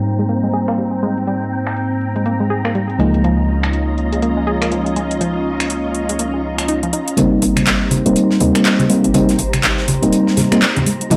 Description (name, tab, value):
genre	deep house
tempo	122 BPM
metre	4/4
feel	swing 60% on 16ths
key	Ab major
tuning	A4 = 440 Hz
part	soft string machine	sustained chords	0.0-11.2 s	C4 to Bb5	-26 LUFS	equal	ensemble chorus
part	mellow FM electric piano	stabs	0.0-11.2 s	Db2 to Eb4	-19 LUFS	equal	chorus, low-pass filter, analog delay
part	house drum kit	drums	0.0-11.2 s	finger snaps, handclaps, hi-hat	-22 LUFS	equal	none
part	analog pluck	arpeggios	0.2-11.2 s	F3 to Ab4	-25 LUFS	equal	chorus, phaser, tape echo
part	hollow knocking FM bass	bass	7.2-11.2 s	Eb1 to Eb2	-24 LUFS	equal	transformer saturation
part	gated 80s drum kit	drums	7.2-11.2 s	hi-hat, snare drum	-32 LUFS	equal	high-pass filter on hats, high-pass filter on snare, high-pass filter on room
part	congas	percussion	7.2-11.2 s	none	-23 LUFS	equal	none
room	light reverb, small room ambience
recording	vinyl crackle, low-pass filter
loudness	-16 LUFS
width	mono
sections	0.0-7.2 A section; 7.2-11.2 B section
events	filter sweep on string machine 0.0-7.2; filter sweep 0.0-7.2; build-up 7.2-11.2; filter sweep on FM electric piano 7.2-11.2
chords	0.0 Abmaj9; 3.0 Db69; 7.2 Abmaj9